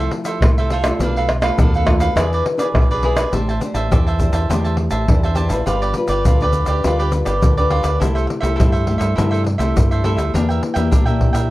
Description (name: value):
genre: samba and choro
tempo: 103 BPM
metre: 4/4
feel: straight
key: A minor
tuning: A4 = 440 Hz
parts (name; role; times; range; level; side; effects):
- cavaquinho; accompaniment; 0.0-11.5 s; D4 to A5; -23 LUFS; right 3 dB; none
- nylon-string guitar; accompaniment; 0.0-11.5 s; B2 to C5; -22 LUFS; left 2 dB; none
- modern bright fingered electric bass; bass; 0.0-11.5 s; G1 to Bb2; -20 LUFS; equal; none
- pandeiro, tube shaker, surdo and tamborim; percussion; 0.1-11.5 s; none; -18 LUFS; equal; none
room: moderate small room reverb, RT60 0.5 s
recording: worn, warbling old tape, cassette tape, warbly pitch drift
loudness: -15 LUFS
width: side -17 dB against mid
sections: 0.0-3.3 A section; 3.3-11.5 B section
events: none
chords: 0.0 Fmaj7; 1.0 Bm7b5; 2.2 E7; 3.3 Am11; 5.7 G7; 8.0 C6; 10.3 Em7b5